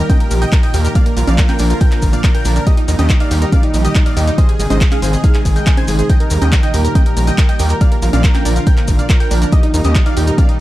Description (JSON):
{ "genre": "uplifting trance", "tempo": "140 BPM", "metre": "4/4", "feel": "straight", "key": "Eb major", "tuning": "A4 = 439 Hz", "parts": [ { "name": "supersaw stab", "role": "melody", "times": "0.0-10.6 s", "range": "Eb4 to Ab5", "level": "-23 LUFS", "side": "right 1 dB", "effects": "sidechain pumping, tape echo" }, { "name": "clear concert grand piano", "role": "second line", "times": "0.0-10.6 s", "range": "Eb5 to Ab6", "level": "-29 LUFS", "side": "left 2 dB", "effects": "sidechain pumping, tape echo" }, { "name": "lush unison pad", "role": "sustained chords", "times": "0.0-10.6 s", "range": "Bb2 to Ab4", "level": "-22 LUFS", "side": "equal", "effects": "chorus, sidechain pumping" }, { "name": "analog pluck", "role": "arpeggios", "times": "0.0-10.4 s", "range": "Bb2 to Eb5", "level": "-25 LUFS", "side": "right 3 dB", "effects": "lush chorus, sidechain pumping, tape echo" }, { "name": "gritty driven synth bass", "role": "bass", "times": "0.0-10.3 s", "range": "Ab1 to Eb2", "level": "-14 LUFS", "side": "equal", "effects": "sidechain pumping" }, { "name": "electronic kick drum", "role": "drums", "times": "0.1-10.5 s", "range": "none", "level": "-12 LUFS", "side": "equal", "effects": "none" }, { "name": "punchy analog drum machine", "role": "drums", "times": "0.1-10.6 s", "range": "congas, handclaps, hi-hat", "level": "-23 LUFS", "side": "right 1 dB", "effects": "none" }, { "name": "maracas", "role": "percussion", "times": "0.1-10.5 s", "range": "none", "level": "-29 LUFS", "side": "left 2 dB", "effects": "none" } ], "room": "little or no reverb", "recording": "dark, warm production", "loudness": "-11 LUFS", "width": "side -16 dB against mid", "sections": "0.0-10.6 A section", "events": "none", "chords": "0.0 Eb; 1.0 Bb; 2.7 Eb; 4.4 Ab; 6.1 Eb; 7.8 Bb; 9.5 Eb", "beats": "0.10 0.53 | 0.95 1.38 1.81 2.24 | 2.67 3.10 3.52 3.95 | 4.38 4.81 5.24 5.67 | 6.10 6.53 6.95 7.38 | 7.81 8.24 8.67 9.10 | 9.53 9.95 10.38" }